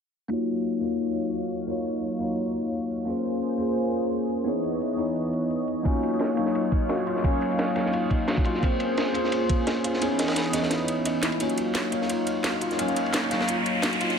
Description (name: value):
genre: liquid drum and bass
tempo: 173 BPM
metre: 4/4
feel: swing 54% on 16ths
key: Eb minor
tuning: A4 = 441 Hz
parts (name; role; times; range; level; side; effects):
- bell-like tine electric piano; accompaniment; 0.3-14.2 s; Fb3 to F5; -26 LUFS; left 1 dB; phaser, low-pass filter, ping-pong delay
- warm analog pad; sustained chords; 0.3-14.2 s; Fb3 to F5; -32 LUFS; equal; chorus, sidechain pumping
- garage drum kit; drums; 0.3-14.2 s; hi-hat, snare drum; -30 LUFS; right 1 dB; none
- felt-muted upright piano; arpeggios; 5.9-14.2 s; C4 to Eb5; -31 LUFS; left 2 dB; ping-pong delay
- crunchy breakbeat drum kit; drums; 5.9-14.2 s; ride cymbal, snare drum; -31 LUFS; right 1 dB; high-pass filter on cymbals, high-pass filter on snare, high-pass filter on room
- electronic kick drum; drums; 5.9-9.6 s; none; -24 LUFS; equal; none
- riser; sound effects; 12.3-14.2 s; none; -31 LUFS; equal; none
room: moderate recital hall reverb, RT60 1.4 s, studio reverb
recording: high-pass filter, low-pass filter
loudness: -23 LUFS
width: side -6 dB against mid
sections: 0.3-11.4 A section; 11.4-14.2 B section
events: filter sweep on tine electric piano 0.3-11.4; filter sweep 0.3-11.4, 11.4-14.2; kick drops out 10.0-11.4; drum fill 11.2; build-up 11.4-14.2; riser 12.3-14.2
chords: 0.3 Ebm9; 3.1 Bbm9; 4.5 Dbm9; 5.9 Ebm9; 8.6 Bbm9; 10.0 Dbm9; 11.4 Ebm9